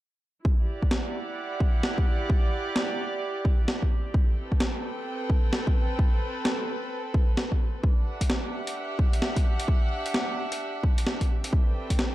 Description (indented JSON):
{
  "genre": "UK garage, two-step garage",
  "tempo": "130 BPM",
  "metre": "4/4",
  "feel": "swing 63% on 16ths",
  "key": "E minor",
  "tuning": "A4 = 440 Hz",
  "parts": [
    { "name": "electronic kick drum", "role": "drums", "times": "0.5-12.0 s", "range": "none", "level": "-23 LUFS", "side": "equal", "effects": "overdrive" },
    { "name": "rich chamber string section", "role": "texture", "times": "0.5-12.1 s", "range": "C4 to G5", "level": "-33 LUFS", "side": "right 1 dB", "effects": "sidechain pumping" },
    { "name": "breakbeat sampler-style drum kit", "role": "drums", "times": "0.9-12.1 s", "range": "hi-hat, snare drum", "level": "-30 LUFS", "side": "equal", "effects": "none" }
  ],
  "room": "little or no reverb",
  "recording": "dark, warm production",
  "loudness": "-24 LUFS",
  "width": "side -16 dB against mid",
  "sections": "0.5-12.1 A section",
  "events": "none",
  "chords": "0.5 Em9; 3.9 Am9; 7.8 Em9; 11.3 Am9",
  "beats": "| 0.45 0.91 1.37 1.84 | 2.30 2.76 3.22 3.68 | 4.14 4.61 5.07 5.53 | 5.99 6.45 6.91 7.37 | 7.84 8.30 8.76 9.22 | 9.68 10.14 10.61 11.07 | 11.53 11.99"
}